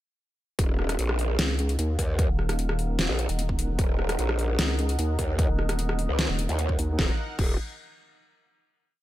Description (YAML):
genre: heavy wobble dubstep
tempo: 150 BPM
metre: 4/4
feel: half-time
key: Eb minor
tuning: A4 = 440 Hz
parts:
  - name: supersaw pad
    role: sustained chords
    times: 0.6-7.2 s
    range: Eb4 to Gb5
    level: -37 LUFS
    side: right 1 dB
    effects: sidechain pumping, low-pass filter
  - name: growl bass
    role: bass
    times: 0.6-7.6 s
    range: Eb1 to Eb2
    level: -26 LUFS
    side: equal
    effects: chorus, overdrive
  - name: dubstep drum kit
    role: drums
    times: 0.6-7.5 s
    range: crash cymbal, hi-hat, rim click, snare drum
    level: -30 LUFS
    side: equal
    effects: overdrive
  - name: electronic kick drum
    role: drums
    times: 0.6-7.5 s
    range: none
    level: -26 LUFS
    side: equal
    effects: overdrive
  - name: vowel-sweep wobble bass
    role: bass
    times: 1.4-7.0 s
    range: Eb1 to Eb2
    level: -26 LUFS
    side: equal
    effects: chorus, overdrive
room: digital ambience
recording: none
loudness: -24 LUFS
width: side -14 dB against mid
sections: 0.6-7.0 drop; 7.0-8.6 final chord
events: drop 0.6-7.0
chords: 0.6 Ebmadd9